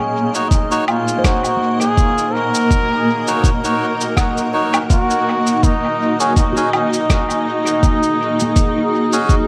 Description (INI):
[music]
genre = ambient dub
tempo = 82 BPM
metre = 4/4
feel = swing 55% on 16ths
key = unclear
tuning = A4 = 440 Hz
[part]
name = trombone with straight mute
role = melody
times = 0.0-9.5 s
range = Db4 to Bb4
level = -22 LUFS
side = equal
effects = dub echo
[part]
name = granular cloud pad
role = sustained chords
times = 0.0-9.5 s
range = Bb3 to Eb5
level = -22 LUFS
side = equal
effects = built-in reverb
[part]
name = handpan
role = arpeggios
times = 0.0-9.5 s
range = Gb3 to Gb5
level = -29 LUFS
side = equal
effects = dub echo
[part]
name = melodica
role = stabs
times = 0.3-9.3 s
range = Db4 to Db5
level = -26 LUFS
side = equal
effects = dub echo
[part]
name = electronic cabasa, woodblock and rim click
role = drums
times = 0.3-9.5 s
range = none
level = -27 LUFS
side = equal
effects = overdrive, dub echo
[part]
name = electronic kick drum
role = drums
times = 0.5-9.5 s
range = none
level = -18 LUFS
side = equal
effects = overdrive
[sound]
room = moderate spring reverb, RT60 1.9 s, studio reverb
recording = none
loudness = -16 LUFS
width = mono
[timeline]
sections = 0.0-9.5 A section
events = none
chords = 0.0 Ab7sus4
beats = 0.51 1.25 1.98 | 2.71 3.44 4.17 4.90 | 5.63 6.37 7.10 7.83 | 8.56 9.29